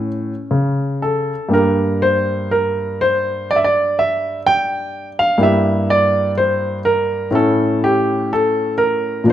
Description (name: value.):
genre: classical, baroque-style suite movement for grand piano.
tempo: 62 BPM.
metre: 4/4.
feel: rubato.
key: unclear.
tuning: A4 = 440 Hz.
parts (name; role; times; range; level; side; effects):
warm baby grand piano; solo; 0.0-9.3 s; G2 to G5; -15 LUFS; equal; none.
room: moderate large studio reverb, RT60 1.2 s.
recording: none.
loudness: -15 LUFS.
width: side -11 dB against mid.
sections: 0.0-1.5 A section; 1.5-9.3 B section.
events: none.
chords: 0.0 A; 1.5 Gm; 5.4 Edim/G; 7.3 A.